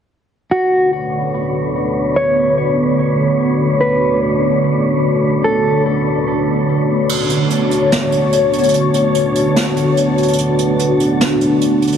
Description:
hip hop, atmospheric cloud-rap; 146 BPM; 4/4; half-time; B minor; A4 = 440 Hz
mellow electric guitar; melody; 0.5-5.8 s; F#4 to C#5; -18 LUFS; equal; ping-pong delay
dark analog pad; sustained chords; 0.9-12.0 s; D3 to C#5; -14 LUFS; equal; chorus, phaser
wind-like tuned noise texture; texture; 0.8-12.0 s; A3 to A5; -22 LUFS; right 1 dB; built-in reverb
jazz brush drum kit; drums; 7.1-12.0 s; crash cymbal, hi-hat, snare drum; -20 LUFS; right 2 dB
light reverb, studio ambience; heavily compressed radio sound, multiband compression; -13 LUFS; side -8 dB against mid
0.5-7.1 A section; 7.1-12.0 B section
kick muted 7.1-12.0
0.5 Bm9
| 0.52 0.93 1.34 1.75 | 2.16 2.57 2.98 3.39 | 3.81 4.22 4.63 5.04 | 5.45 5.86 6.27 6.68 | 7.09 7.50 7.91 8.32 | 8.74 9.15 9.56 9.97 | 10.38 10.79 11.20 11.61

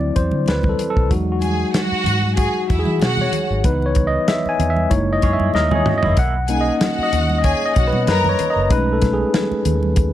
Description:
lush 1970s-style soul; 95 BPM; 4/4; swing 54% on 16ths; A4 = 440 Hz
tine electric piano; accompaniment; 0.0-10.1 s; E3 to G#5; -19 LUFS; left 2 dB; medium stereo tremolo
vintage muted fingered electric bass; bass; 0.0-10.1 s; F#1 to E3; -21 LUFS; equal
congas; percussion; 0.0-10.0 s; -28 LUFS; right 5 dB
warm soul drum kit; drums; 0.2-10.1 s; hi-hat, kick drum, snare drum, toms; -20 LUFS; equal
rich studio violin section; second line; 1.4-8.5 s; E4 to A#5; -23 LUFS; left 1 dB
electric guitar through a small old amp; riff; 5.2-6.3 s; A#3 to C#5; -25 LUFS; right 3 dB; lush chorus
studio reverb; -15 LUFS; side -12 dB against mid
0.0-10.1 A section
tine electric piano solo 0.0-10.1; drum fill 5.5-6.2
0.0 D9; 1.1 Emaj9; 3.6 C#m7; 4.9 F#13; 6.2 Bmaj7; 8.7 B13
0.48 | 1.11 1.75 2.38 3.02 | 3.65 4.28 4.91 5.55 | 6.18 6.81 7.44 8.08 | 8.71 9.34 9.97

